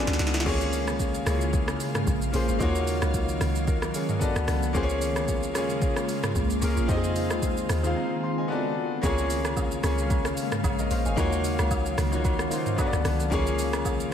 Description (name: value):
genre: amapiano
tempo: 112 BPM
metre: 4/4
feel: swing 55% on 16ths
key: Db major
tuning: A4 = 440 Hz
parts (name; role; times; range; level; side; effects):
- clear concert grand piano; accompaniment; 0.0-14.1 s; Bb3 to C6; -28 LUFS; left 2 dB; none
- ethereal airy pad; sustained chords; 0.0-14.1 s; Db3 to F5; -31 LUFS; equal; ensemble chorus, built-in reverb, sidechain pumping
- smooth R&B drum kit; drums; 0.0-14.1 s; crash cymbal, hi-hat, kick drum, rim click, shaker, snare drum, toms; -29 LUFS; equal; overdrive
- deep log drum bass; bass; 0.1-14.1 s; Ab1 to F2; -28 LUFS; equal; none
- agogo bells and woodblock; percussion; 9.0-14.0 s; none; -38 LUFS; right 3 dB; none
room: moderate lush hall reverb, RT60 1.8 s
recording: dreamy mix soaked in reverb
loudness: -23 LUFS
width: side -8 dB against mid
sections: 0.0-14.1 A section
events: grand piano fill 0.0-0.5; drum fill 0.0-0.5; break 8.0-9.0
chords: 0.5 Db6; 2.6 Ebm9; 4.2 D6; 4.7 Db6; 6.9 Fm7; 8.5 D6; 9.0 Db6; 11.2 Ebm9; 12.8 D6; 13.3 Db6